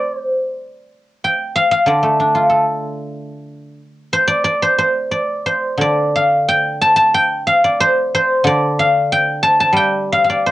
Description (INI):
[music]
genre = chinese traditional, Chinese solo plucked strings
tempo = 87-96 BPM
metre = 2/4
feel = rubato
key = D yu mode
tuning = A4 = 438 Hz
[part]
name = guzheng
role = solo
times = 0.0-10.5 s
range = D3 to A5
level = -13 LUFS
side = equal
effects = cassette tape
[sound]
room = moderate booth ambience, RT60 0.2 s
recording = home recording on cassette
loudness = -13 LUFS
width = side -15 dB against mid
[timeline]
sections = 0.0-5.8 A section; 5.8-10.5 B section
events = none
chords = none